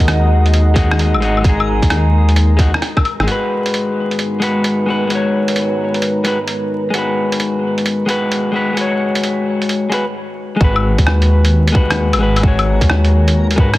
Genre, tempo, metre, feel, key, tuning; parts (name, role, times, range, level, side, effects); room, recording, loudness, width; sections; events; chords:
future garage; 131 BPM; 4/4; swing 66% on 16ths; G# minor; A4 = 440 Hz
electric guitar at the edge of break-up; accompaniment; 0.0-13.7 s; G#3 to C#5; -17 LUFS; left 2 dB; sidechain pumping, tape echo
dark analog pad; sustained chords; 0.0-10.2 s; G#3 to A#5; -23 LUFS; right 1 dB; chorus, sidechain pumping
dark detuned saw bass; bass; 0.0-3.3, 10.6-13.8 s; G#1 to G#2; -13 LUFS; equal; sidechain pumping
electronic kick drum; drums; 0.0-3.0, 10.6-13.7 s; -13 LUFS; equal
lo-fi sampler-style drum kit; drums; 0.0-13.8 s; claves, hi-hat, rim click; -19 LUFS; equal; soft clipping on snare
backwards swelling texture; texture; 0.0-3.3, 12.6-13.8 s; A#4; -30 LUFS; right 1 dB; built-in reverb
light reverb; dense, heavily limited modern master, vinyl crackle; -12 LUFS; side -17 dB against mid
0.0-3.3 A section; 3.3-10.6 B section; 10.6-13.8 C section
drum fill 2.8-3.3; band accent 3.2; break 10.1-10.6
0.0 D#m; 3.3 G#m7